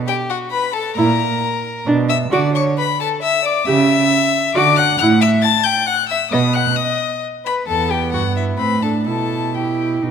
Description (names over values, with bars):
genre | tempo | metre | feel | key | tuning
quick classical-period movement for string quartet | 133 BPM | 3/4 | rubato | E minor from 5.0 s | A4 = 440 Hz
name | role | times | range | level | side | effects
rich violin | melody | 0.1-10.0 s | E5 to A6 | -20 LUFS | left 11 dB | none
warm violin | second line | 0.1-10.0 s | E4 to A5 | -21 LUFS | left 4 dB | none
warm viola | accompaniment | 1.0-10.1 s | B3 to G4 | -21 LUFS | right 3 dB | none
rich cello | bass | 1.0-10.1 s | E2 to D3 | -19 LUFS | right 4 dB | none
room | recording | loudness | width
light reverb | none | -15 LUFS | side -7 dB against mid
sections
0.0-10.1 A section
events
none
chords
0.0 B5; 1.0 N.C.; 1.9 Bm; 2.3 D; 3.7 C#dim; 4.6 D; 5.0 F#m7/A; 6.3 B; 7.7 Em; 8.6 Am; 9.1 Em/B